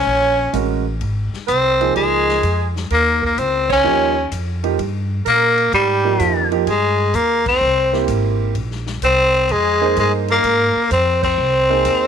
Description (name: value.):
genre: jazz, small-group swing and bop.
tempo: 127 BPM.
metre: 4/4.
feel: swing 68% on 8ths.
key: F minor.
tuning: A4 = 440 Hz.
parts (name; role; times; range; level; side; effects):
growling tenor saxophone; melody; 0.0-12.1 s; G3 to Db4; -16 LUFS; left 3 dB; none.
warm alto saxophone; second line; 0.0-12.1 s; G4 to Db5; -23 LUFS; right 12 dB; none.
upright bass; bass; 0.0-12.1 s; Ab1 to Bb2; -22 LUFS; equal; none.
warm grand piano; accompaniment; 0.5-12.1 s; F3 to C5; -21 LUFS; right 14 dB; none.
vintage drum kit; drums; 0.5-12.0 s; crash cymbal, hi-hat, kick drum, ride cymbal, snare drum; -32 LUFS; left 4 dB; none.
room: light reverb, small room ambience.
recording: 1960s-style stereo.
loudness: -14 LUFS.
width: side -7 dB against mid.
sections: 0.0-12.1 A section.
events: band accent 3.6, 7.4, 11.1.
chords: 0.1 Bbmmaj7; 1.0 Ab; 2.0 Db69; 3.8 Eb7; 5.7 Ab5; 7.6 C7; 9.5 Fm7; 11.4 Cm7.